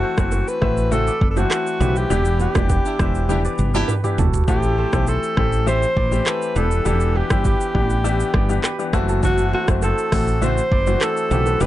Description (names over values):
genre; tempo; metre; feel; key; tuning
afrobeats; 101 BPM; 4/4; straight; unclear; A4 = 443 Hz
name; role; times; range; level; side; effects
breathy alto saxophone; melody; 0.0-11.7 s; F#4 to C5; -23 LUFS; right 1 dB; none
clear grand piano; accompaniment; 0.0-11.7 s; E3 to G4; -25 LUFS; left 8 dB; none
kora; riff; 0.0-11.7 s; E4 to E5; -29 LUFS; right 6 dB; digital delay
woody fretless electric bass; bass; 0.0-11.7 s; E1 to B1; -20 LUFS; equal; none
afro-pop drum kit; drums; 0.2-11.7 s; handclaps, hi-hat, kick drum, rim click, shaker, toms; -22 LUFS; equal; overdrive
bongos and congas; percussion; 0.3-4.3, 9.2-11.7 s; none; -29 LUFS; right 9 dB; none
warm horn section; second line; 2.9-3.9 s; D4 to G4; -25 LUFS; right 2 dB; none
room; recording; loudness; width
light reverb; dark, warm production, nothing above 10.6 kHz; -17 LUFS; side -14 dB against mid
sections
0.0-4.5 A section; 4.5-11.7 B section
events
band accent 2.1-4.5; drum fill 3.3-4.5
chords
0.0 F#m7b5; 2.1 Em7; 4.5 Am7; 6.6 Em7; 8.9 F#m7b5